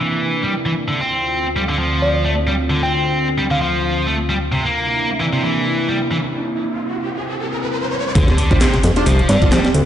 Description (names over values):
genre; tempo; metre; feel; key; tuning
breakbeat, breaks; 132 BPM; 4/4; swing 56% on 16ths; D minor; A4 = 440 Hz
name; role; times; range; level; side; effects
phased analog pad; sustained chords; 0.0-8.1 s; D2 to F4; -22 LUFS; equal; phaser, chorus, vintage 12-bit sampler grit, sidechain pumping
scooped high-gain guitar; riff; 0.0-9.6 s; C3 to C4; -19 LUFS; equal; distortion, vintage 12-bit sampler grit, low-pass filter, digital delay
bell-like FM electric piano; melody; 2.0-3.7, 9.3-9.5 s; D5 to G5; -23 LUFS; equal; chorus, AM radio sound, digital delay
riser and sub drop; sound effects; 5.9-9.9 s; none; -23 LUFS; equal; none
fat analog bass; bass; 8.2-9.8 s; D1 to G2; -15 LUFS; equal; none
breakbeat sampler-style drum kit; drums; 8.2-9.9 s; hi-hat, kick drum, snare drum; -16 LUFS; equal; none
house drum kit; drums; 8.2-9.8 s; handclaps, hi-hat; -27 LUFS; equal; none
orchestra-hit-like synth stab; stabs; 8.5-9.5 s; D4 to C5; -22 LUFS; equal; built-in reverb, digital delay
room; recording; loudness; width
moderate plate reverb, RT60 1.9 s, digital ambience; played on a big sound system in a bare room, large studio reverb, nothing above 10.8 kHz; -15 LUFS; side -10 dB against mid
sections
0.0-8.2 A section; 8.2-9.9 B section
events
riser 5.9-8.2; break 6.3-8.2; drop 8.2-9.9; impact 8.2-9.9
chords
0.0 C9; 0.9 Dm7; 4.5 C9; 8.2 Dm7